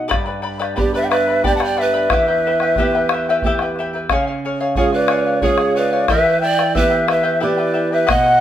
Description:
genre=andean folk, Andean ensemble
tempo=90 BPM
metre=3/4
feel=straight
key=E dorian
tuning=A4 = 441 Hz
part: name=charango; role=accompaniment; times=0.0-8.4 s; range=E4 to B5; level=-22 LUFS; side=left 3 dB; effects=none
part: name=flamenco guitar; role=accompaniment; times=0.0-8.4 s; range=E2 to G#4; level=-23 LUFS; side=right 3 dB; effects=none
part: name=bombo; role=percussion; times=0.1-8.3 s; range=none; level=-21 LUFS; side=left 2 dB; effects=none
part: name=reedy large quena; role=melody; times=0.8-8.4 s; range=C#5 to A5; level=-19 LUFS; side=left 1 dB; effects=none
part: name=breathy bright pan flute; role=second line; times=0.8-8.4 s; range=G4 to F#5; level=-20 LUFS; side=right 4 dB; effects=none
room=moderate large studio reverb, RT60 1.1 s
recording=band playing live in one room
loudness=-14 LUFS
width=side -11 dB against mid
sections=0.0-8.1 A section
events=none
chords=0.1 G; 2.1 Em; 4.1 C#; 6.1 Em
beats=| 0.11 0.78 1.44 | 2.11 2.77 3.44 | 4.10 4.77 5.43 | 6.10 6.76 7.42 | 8.09

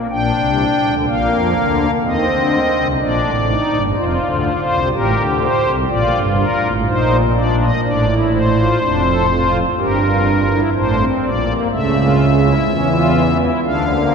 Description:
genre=classical, baroque-style 3-part fugue for pipe organ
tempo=62 BPM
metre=4/4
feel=straight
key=Bb major, D minor from 7.8 s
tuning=A4 = 440 Hz
part: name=pipe organ, strings celeste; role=solo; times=0.0-14.1 s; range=F1 to G5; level=-14 LUFS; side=equal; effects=none
room=wet cathedral reverb, RT60 6.1 s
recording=recorded in a church or concert hall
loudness=-14 LUFS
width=side -6 dB against mid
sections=0.1-7.8 A section; 7.8-14.1 B section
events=none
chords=0.1 Bb; 2.0 Cm; 4.0 F; 5.9 Bb; 7.8 Dm/A; 9.8 Edim/G (rootless); 11.7 A/C# (rootless); 13.6 Dm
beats=| 0.11 1.08 2.04 3.01 | 3.96 4.92 5.89 6.86 | 7.83 8.80 9.77 10.73 | 11.71 12.67 13.63

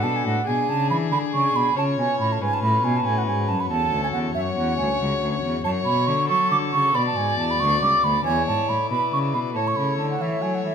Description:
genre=classical, baroque-style sonata movement with continuo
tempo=92 BPM (dotted quarters)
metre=12/8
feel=straight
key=F# minor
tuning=A4 = 441 Hz
part: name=dark violin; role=melody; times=0.0-10.7 s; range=G#4 to D5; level=-27 LUFS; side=left 7 dB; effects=none
part: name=baroque flute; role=second line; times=0.0-10.7 s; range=E5 to D6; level=-23 LUFS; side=right 4 dB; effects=none
part: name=pipe organ, principal chorus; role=accompaniment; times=0.0-10.7 s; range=C#2 to D5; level=-29 LUFS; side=left 3 dB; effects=none
part: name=dark cello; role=bass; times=0.0-10.7 s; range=C#2 to F#3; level=-26 LUFS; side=equal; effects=none
room=moderate recital hall reverb, RT60 1.4 s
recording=none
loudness=-20 LUFS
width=side -7 dB against mid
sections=0.0-10.7 A section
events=none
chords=0.5 G#dim/B; 1.8 C#; 3.0 F#m; 6.9 Bm; 8.2 E7; 9.6 A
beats=| 0.47 1.12 1.76 2.40 | 3.05 3.69 4.34 4.99 | 5.64 6.29 6.94 7.59 | 8.25 8.90 9.55 10.20

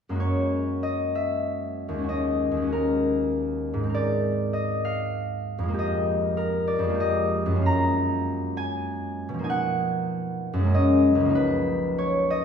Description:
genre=classical, solo harp piece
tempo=97 BPM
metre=3/4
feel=uneven beats, rubato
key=unclear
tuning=A4 = 440 Hz
part: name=concert harp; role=solo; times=0.1-12.4 s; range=C#2 to A#5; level=-22 LUFS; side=equal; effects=none
room=wet stone room reverb, RT60 1.3 s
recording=heard from further back in the room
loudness=-22 LUFS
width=side -7 dB against mid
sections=0.2-12.4 A section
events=none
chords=0.2 F#add9; 2.1 D#m7; 3.9 G#add9; 5.8 Fm11; 7.7 F#maj9; 10.7 F#69; 11.4 C#13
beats=| 0.19 0.83 1.46 | 2.08 2.72 3.33 | 3.94 4.54 5.17 | 5.79 6.38 6.99 | 7.66 8.27 8.87 | 9.50 10.12 10.73 | 11.36 11.99

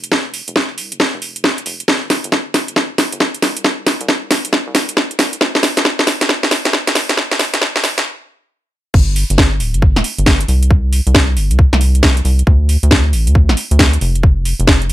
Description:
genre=UK garage, two-step garage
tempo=136 BPM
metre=4/4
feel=swing 64% on 16ths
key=unclear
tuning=A4 = 440 Hz
part: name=rubbery square bass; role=bass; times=0.0-14.9 s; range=D1 to D2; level=-14 LUFS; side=equal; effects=sidechain pumping, high-pass filter
part: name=house drum kit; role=drums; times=0.0-14.9 s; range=crash cymbal, hi-hat, snare drum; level=-14 LUFS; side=equal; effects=none
part: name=electronic kick drum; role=drums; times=0.1-14.8 s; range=none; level=-13 LUFS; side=equal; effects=high-pass filter on kick, high-pass filter on room
room=little or no reverb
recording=high-pass filter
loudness=-12 LUFS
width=side -14 dB against mid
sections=0.0-8.9 A section; 8.9-14.9 B section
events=build-up 0.0-8.9; drum fill 0.0-8.1; stop 8.1-8.9; drop 8.9-14.9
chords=none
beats=| 0.12 0.56 1.00 1.44 | 1.88 2.32 2.76 3.21 | 3.65 4.09 4.53 4.97 | 5.41 5.85 6.29 6.73 | 7.17 7.62 8.06 8.50 | 8.94 9.38 9.82 10.26 | 10.71 11.15 11.59 12.03 | 12.47 12.91 13.35 13.79 | 14.23 14.68

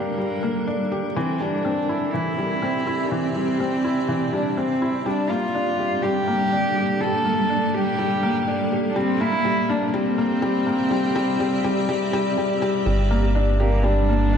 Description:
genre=piano and strings electronica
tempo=123 BPM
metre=4/4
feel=straight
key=G dorian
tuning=A4 = 440 Hz
part: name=warm cello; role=melody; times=0.0-14.4 s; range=Bb3 to A4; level=-24 LUFS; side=equal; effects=none
part: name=granular cloud pad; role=sustained chords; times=0.0-14.4 s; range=G3 to E5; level=-26 LUFS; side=right 1 dB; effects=built-in reverb
part: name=felt-muted upright piano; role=riff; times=0.0-14.4 s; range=E3 to G4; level=-24 LUFS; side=left 2 dB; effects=tape echo
part: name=round analog bass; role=bass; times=0.0-14.4 s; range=G1 to C2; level=-20 LUFS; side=equal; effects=high-pass filter
room=moderate echo chamber reverb, RT60 1.7 s, small room ambience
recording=none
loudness=-20 LUFS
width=side -7 dB against mid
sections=0.0-12.9 A section; 12.9-14.4 B section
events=build-up 0.0-12.9; drop 12.9-14.4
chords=0.0 Gm; 1.2 C; 5.1 Gm; 9.0 C; 12.9 Gm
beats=0.18 0.67 | 1.16 1.64 2.13 2.62 | 3.11 3.59 4.08 4.57 | 5.06 5.54 6.03 6.52 | 7.01 7.50 7.99 8.47 | 8.96 9.45 9.94 10.42 | 10.91 11.40 11.89 12.38 | 12.86 13.35 13.84 14.33

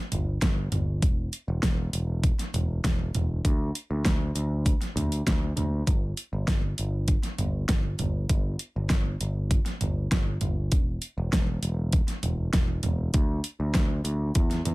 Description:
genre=piano-driven pop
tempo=99 BPM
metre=4/4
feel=straight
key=E minor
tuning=A4 = 440 Hz
part: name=overdriven picked electric bass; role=bass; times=0.1-14.7 s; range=E1 to E2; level=-28 LUFS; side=equal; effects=none
part: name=pop drum kit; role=drums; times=0.1-14.7 s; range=hi-hat, kick drum, snare drum, toms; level=-26 LUFS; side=equal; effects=overdrive
room=little or no reverb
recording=dense, heavily limited modern master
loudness=-24 LUFS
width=side -20 dB against mid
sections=0.0-14.7 A section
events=none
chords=none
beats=0.42 | 1.02 1.63 2.24 2.84 | 3.45 4.05 4.66 5.27 | 5.87 6.48 7.09 7.69 | 8.30 8.90 9.51 10.12 | 10.72 11.33 11.93 12.54 | 13.15 13.75 14.36

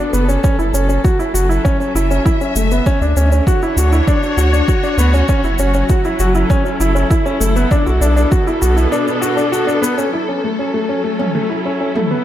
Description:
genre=piano and strings electronica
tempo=99 BPM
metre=4/4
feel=straight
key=F# minor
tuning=A4 = 440 Hz
part: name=dark symphonic string section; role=sustained chords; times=0.0-12.2 s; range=B2 to E5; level=-21 LUFS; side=left 1 dB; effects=sidechain pumping
part: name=warm concert grand piano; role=riff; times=0.0-12.2 s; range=A3 to F#4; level=-17 LUFS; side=left 1 dB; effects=tape echo
part: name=round analog bass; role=bass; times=0.1-8.9 s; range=F#1 to D2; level=-15 LUFS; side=equal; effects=sidechain pumping
part: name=electronic shaker and toms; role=drums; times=0.1-12.1 s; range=none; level=-26 LUFS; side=right 1 dB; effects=none
part: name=electronic kick drum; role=drums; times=0.4-8.4 s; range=none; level=-15 LUFS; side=equal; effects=none
room=light reverb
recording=none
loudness=-13 LUFS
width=side -12 dB against mid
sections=0.0-10.1 A section; 10.1-12.2 B section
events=break 8.9-10.1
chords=0.4 F#m7; 2.9 Dmaj7; 5.3 F#m7; 7.7 Bm7; 10.1 F#m7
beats=| 0.44 1.05 1.65 2.26 | 2.86 3.47 4.08 4.68 | 5.29 5.89 6.50 7.11 | 7.71 8.32 8.93 9.53 | 10.14 10.74 11.35 11.96

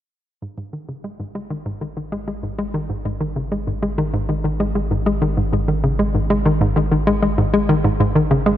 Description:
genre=ambient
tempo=97 BPM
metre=4/4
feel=straight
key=unclear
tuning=A4 = 440 Hz
part: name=hollow square pluck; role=riff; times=0.4-8.5 s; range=G#2 to G#3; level=-18 LUFS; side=equal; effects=chorus, ping-pong delay
part: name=round analog bass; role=bass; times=0.4-8.6 s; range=G#1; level=-25 LUFS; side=equal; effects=none
room=moderate lush hall reverb, RT60 2.8 s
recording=none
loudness=-17 LUFS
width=side -12 dB against mid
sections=0.4-8.6 A section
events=fade-in on synth arpeggio sound 0.4-8.6; fade-in on analog synth bass 0.4-8.6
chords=0.4 G#5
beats=| 0.42 1.04 1.66 2.28 | 2.90 3.52 4.14 4.75 | 5.37 5.99 6.61 7.23 | 7.85 8.47

